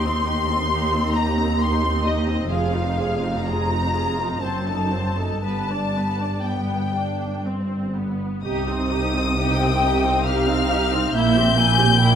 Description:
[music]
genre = classical, slow romantic movement for string orchestra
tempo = 58-71 BPM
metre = 3/4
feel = rubato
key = C minor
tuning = A4 = 440 Hz
[part]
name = clear studio violin section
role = melody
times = 0.0-12.2 s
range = Eb5 to G6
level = -26 LUFS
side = left 4 dB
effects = none
[part]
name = rich studio violin section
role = second line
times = 0.0-12.2 s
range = Eb5 to C6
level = -26 LUFS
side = left 3 dB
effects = none
[part]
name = clear studio viola section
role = accompaniment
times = 0.0-12.2 s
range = Bb3 to D5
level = -26 LUFS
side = right 2 dB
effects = none
[part]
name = rich studio cello section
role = bass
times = 0.0-12.2 s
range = Eb2 to C3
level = -25 LUFS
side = right 1 dB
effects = none
[part]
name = rich symphonic double bass section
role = bass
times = 0.0-12.2 s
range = F1 to Eb2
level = -25 LUFS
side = right 2 dB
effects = none
[sound]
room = light reverb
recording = close, detailed microphones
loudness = -19 LUFS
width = side -8 dB against mid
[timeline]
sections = 0.0-8.4 A section; 8.4-12.2 B section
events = none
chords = 0.0 Cm/Eb; 2.5 Fm7; 4.4 F#dim7; 5.4 G; 8.4 Cm; 11.1 C7/Bb

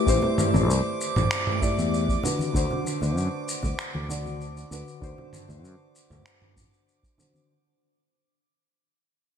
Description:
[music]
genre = sunset chillout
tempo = 97 BPM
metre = 4/4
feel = straight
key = unclear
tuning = A4 = 439 Hz
[part]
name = dark baby grand piano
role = accompaniment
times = 0.0-7.5 s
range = D3 to D5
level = -28 LUFS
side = left 3 dB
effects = auto-pan, digital delay
[part]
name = drifting glass-harmonics texture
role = texture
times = 0.0-7.5 s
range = D6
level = -34 LUFS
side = right 3 dB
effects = chorus, built-in reverb
[part]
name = fretless electric bass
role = bass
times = 0.1-6.7 s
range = A1 to F#2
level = -27 LUFS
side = equal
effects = none
[part]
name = dusty soul sampler-style drum kit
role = drums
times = 0.1-7.5 s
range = finger snaps, shaker, toms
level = -30 LUFS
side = right 1 dB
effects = gated reverb
[part]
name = electronic kick drum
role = drums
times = 0.1-7.2 s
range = none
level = -27 LUFS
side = equal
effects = overdrive
[part]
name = congas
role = percussion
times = 0.2-7.5 s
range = none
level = -34 LUFS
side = left 1 dB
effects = none
[sound]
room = moderate lush hall reverb, RT60 2.8 s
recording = bright 1980s-style digital production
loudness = -23 LUFS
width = side -8 dB against mid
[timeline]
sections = 0.0-7.5 A section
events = fade-out 0.0-7.5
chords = 0.0 Am7; 2.2 D7

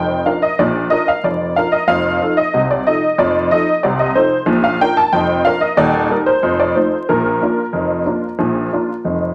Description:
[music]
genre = ragtime piano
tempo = 92 BPM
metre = 2/4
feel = straight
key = Bb major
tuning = A4 = 440 Hz
[part]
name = honky-tonk upright piano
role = solo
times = 0.0-9.3 s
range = Eb1 to A5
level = -16 LUFS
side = equal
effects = none
[sound]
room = wet studio reverb, RT60 0.7 s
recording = vinyl crackle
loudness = -16 LUFS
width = mono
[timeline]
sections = 0.0-9.3 A section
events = none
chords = 0.0 Bb; 1.9 F7; 4.5 Bb; 5.8 Eb; 6.4 F7; 7.1 Bb

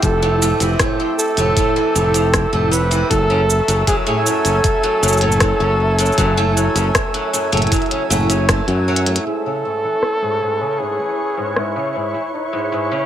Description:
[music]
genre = folktronica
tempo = 78 BPM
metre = 4/4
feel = straight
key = A major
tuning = A4 = 439 Hz
[part]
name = breathy flugelhorn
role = melody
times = 0.0-13.1 s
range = E4 to B4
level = -20 LUFS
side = equal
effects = vintage 12-bit sampler grit, ping-pong delay
[part]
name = hand-pumped harmonium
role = sustained chords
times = 0.0-13.1 s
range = F#3 to G#5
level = -26 LUFS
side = right 1 dB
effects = low-pass filter
[part]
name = modern bright fingered electric bass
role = bass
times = 0.0-9.2 s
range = F1 to F#2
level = -18 LUFS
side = equal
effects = none
[part]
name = electronic kick drum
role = drums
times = 0.0-8.6 s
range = none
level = -21 LUFS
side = equal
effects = small room ambience
[part]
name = minimal click drum kit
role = drums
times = 0.0-13.1 s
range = hi-hat, rim click, shaker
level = -20 LUFS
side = equal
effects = low-pass filter on hats, small room ambience, low-pass filter on perc, low-pass filter on snare
[part]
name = flickering grainy texture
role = texture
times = 0.0-13.1 s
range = C#5 to E6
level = -27 LUFS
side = equal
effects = built-in reverb
[part]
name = picked twelve-string acoustic guitar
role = arpeggios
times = 0.2-13.1 s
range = F#2 to A3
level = -21 LUFS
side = equal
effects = low-pass filter, ping-pong delay
[sound]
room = light reverb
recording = none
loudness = -15 LUFS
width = side -10 dB against mid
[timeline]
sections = 0.0-9.3 A section; 9.3-13.1 B section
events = drum fill 8.9-9.3; filter sweep on drum 9.3-13.1; filter sweep on twelve-string acoustic guitar 9.3-13.1; filter sweep on harmonium 9.3-13.1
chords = 0.0 Fmaj7; 3.1 F#madd9; 9.3 Amaj7

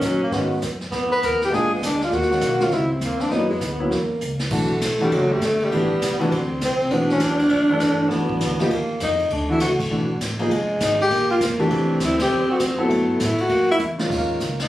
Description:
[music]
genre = jazz, small-group swing and bop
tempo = 200 BPM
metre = 4/4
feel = swing 63% on 8ths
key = B minor from 4.5 s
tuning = A4 = 438 Hz
[part]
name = breathy tenor saxophone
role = melody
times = 0.0-14.7 s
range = F#3 to B4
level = -21 LUFS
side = left 1 dB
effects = none
[part]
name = growling alto saxophone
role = second line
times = 0.0-13.9 s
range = Ab3 to D4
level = -24 LUFS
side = right 1 dB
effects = none
[part]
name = upright bass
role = bass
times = 0.0-14.7 s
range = E1 to Bb2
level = -30 LUFS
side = equal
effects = none
[part]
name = jazz brush drum kit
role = drums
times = 0.0-14.7 s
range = brushed snare drum, crash cymbal, hi-hat, kick drum, ride cymbal, snare drum, toms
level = -29 LUFS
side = equal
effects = none
[part]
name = warm concert grand piano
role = accompaniment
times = 0.3-14.4 s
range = Eb3 to A4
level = -23 LUFS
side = equal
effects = none
[sound]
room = moderate club ambience, RT60 0.5 s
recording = recorded on a phone in the room, studio reverb, compression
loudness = -18 LUFS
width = side -14 dB against mid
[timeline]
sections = 0.0-4.5 A section; 4.5-14.1 B section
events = drum fill 4.2, 13.8-14.1; band accent 12.2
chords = 0.0 Abm7; 0.9 G7#9b13 (rootless); 1.5 Bb7; 2.1 Ebm7; 3.3 Gb7; 4.5 Bm7; 5.7 Am7; 6.3 Csus2; 6.9 G6; 8.1 Em7; 8.7 D#5; 9.3 Dmaj7; 10.5 Fm; 11.1 A#; 11.7 Cadd9; 12.9 Gmaj13; 13.5 F#7; 14.1 Eb5

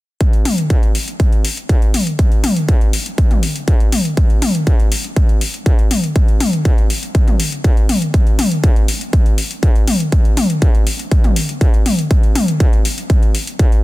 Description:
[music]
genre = techno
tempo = 121 BPM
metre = 4/4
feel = straight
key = none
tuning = none
[part]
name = electronic kick drum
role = drums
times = 0.2-13.7 s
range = none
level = -12 LUFS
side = equal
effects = distortion, small room ambience
[part]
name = techno drum kit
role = drums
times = 0.2-13.8 s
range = hi-hat, toms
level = -19 LUFS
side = left 1 dB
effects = small room ambience
[sound]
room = little or no reverb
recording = dense, heavily limited modern master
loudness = -12 LUFS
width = side -19 dB against mid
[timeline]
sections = 0.2-13.8 A section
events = none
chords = none

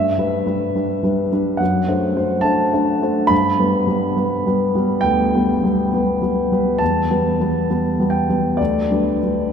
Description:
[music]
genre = classical, romantic nocturne for solo piano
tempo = 69 BPM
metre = 4/4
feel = rubato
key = G major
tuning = A4 = 440 Hz
[part]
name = warm concert grand piano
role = solo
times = 0.0-9.5 s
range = D2 to B5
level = -16 LUFS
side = equal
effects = none
[sound]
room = wet cathedral reverb, RT60 5.3 s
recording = in a vast, echoing space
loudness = -16 LUFS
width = side -7 dB against mid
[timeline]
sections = 0.0-9.5 A section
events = none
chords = 0.0 G; 1.6 D7/F#; 3.3 G; 6.8 Em; 8.6 G/D

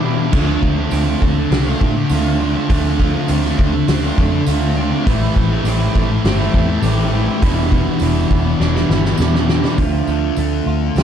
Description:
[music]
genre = rock, shoegaze and dream pop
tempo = 102 BPM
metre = 4/4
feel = straight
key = unclear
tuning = A4 = 441 Hz
[part]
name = twelve-string electric guitar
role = arpeggios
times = 0.0-11.0 s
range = E3 to G4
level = -28 LUFS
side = right 4 dB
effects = wide subtle chorus, slapback echo
[part]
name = electric guitar through a small old amp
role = riff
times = 0.0-11.0 s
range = E2 to F4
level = -21 LUFS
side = right 13 dB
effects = reverse reverb
[part]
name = thick fuzz guitar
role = riff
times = 0.0-11.0 s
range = E2 to D4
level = -20 LUFS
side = left 9 dB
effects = distortion, lush chorus
[part]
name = tight distorted guitar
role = riff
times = 0.0-9.8 s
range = E2 to D4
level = -25 LUFS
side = right 1 dB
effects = distortion
[part]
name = vintage muted fingered electric bass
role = bass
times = 0.3-11.0 s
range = E1 to A2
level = -19 LUFS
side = equal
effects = none
[part]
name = loose indie drum kit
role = drums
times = 0.3-11.0 s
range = crash cymbal, hi-hat, kick drum, snare drum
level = -20 LUFS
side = equal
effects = none
[part]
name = tambourine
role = percussion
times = 0.9-11.0 s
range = none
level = -37 LUFS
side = right 14 dB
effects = none
[sound]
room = small room ambience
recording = dark, warm production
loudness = -14 LUFS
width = side -8 dB against mid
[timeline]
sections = 0.0-9.8 A section; 9.8-11.0 B section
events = drum fill 8.6-9.8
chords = 0.3 Dm7; 5.1 Am7; 7.4 Em7; 9.8 Dm7

